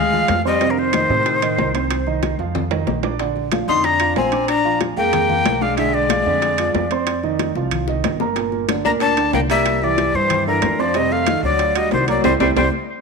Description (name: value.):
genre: Afro-Cuban jazz.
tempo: 186 BPM.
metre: 4/4.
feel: straight.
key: unclear.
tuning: A4 = 440 Hz.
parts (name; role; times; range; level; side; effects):
breathy bright jazz flute; melody; 0.0-12.7 s; Bb4 to C6; -19 LUFS; left 2 dB; tape echo.
warm tenor saxophone; second line; 0.0-12.6 s; D3 to Eb4; -23 LUFS; left 10 dB; none.
warm concert grand piano; accompaniment; 0.0-12.7 s; Bb2 to D6; -22 LUFS; right 12 dB; none.
upright bass; bass; 0.0-12.7 s; G1 to A2; -26 LUFS; equal; none.
congas; percussion; 0.1-12.6 s; none; -28 LUFS; left 12 dB; none.
bongos; percussion; 0.3-12.6 s; none; -29 LUFS; left 14 dB; none.
timbales; percussion; 0.3-12.6 s; none; -26 LUFS; right 13 dB; none.
room: moderate echo chamber reverb, RT60 1.3 s.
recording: 1960s-style stereo with parts hard left and right.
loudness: -16 LUFS.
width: side -4 dB against mid.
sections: 0.0-13.0 A section.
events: drum fill 2.5-3.2, 7.6-8.4; band accent 12.2-13.0.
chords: 0.0 Bb9 (rootless); 0.6 F7; 1.9 Cm; 2.5 Bbadd11; 3.2 Bb7; 5.8 Bdim7; 7.1 Fsus2; 8.4 Gm; 9.7 C9; 10.9 F7; 11.6 D7; 12.2 C.